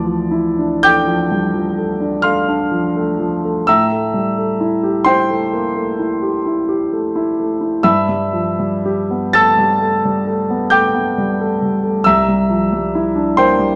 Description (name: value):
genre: classical, impressionist solo piano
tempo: 37-46 BPM (dotted quarters)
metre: 9/8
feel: rubato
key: D minor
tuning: A4 = 440 Hz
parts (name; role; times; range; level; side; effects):
- warm grand piano; solo; 0.0-13.8 s; C2 to A6; -16 LUFS; equal; none
room: light reverb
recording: close, detailed microphones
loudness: -16 LUFS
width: mono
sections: 0.0-13.8 A section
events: none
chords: 0.0 Dmadd9; 3.7 Am7; 7.8 G69; 12.1 C9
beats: 0.81 2.23 | 3.67 5.07 6.45 | 7.84 9.33 10.72 | 12.05 13.38